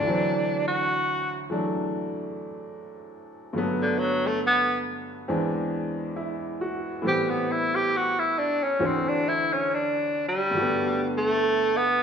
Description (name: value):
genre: jazz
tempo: 68 BPM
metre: 4/4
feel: swing 68% on 8ths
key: G major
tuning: A4 = 437 Hz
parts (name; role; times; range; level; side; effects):
- clear tenor saxophone; melody; 0.0-12.0 s; D3 to G4; -23 LUFS; equal; none
- bright upright piano; accompaniment; 0.0-12.0 s; D2 to F#4; -28 LUFS; equal; none
room: wet recital hall reverb, RT60 1.4 s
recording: recorded in a church or concert hall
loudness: -23 LUFS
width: side -7 dB against mid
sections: 0.0-10.5 A section; 10.5-12.0 B section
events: tenor saxophone solo 0.0-10.5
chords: 0.0 D9; 3.5 Gmaj9; 5.3 E7b13; 7.0 Am7; 8.8 D9; 10.5 Gmaj9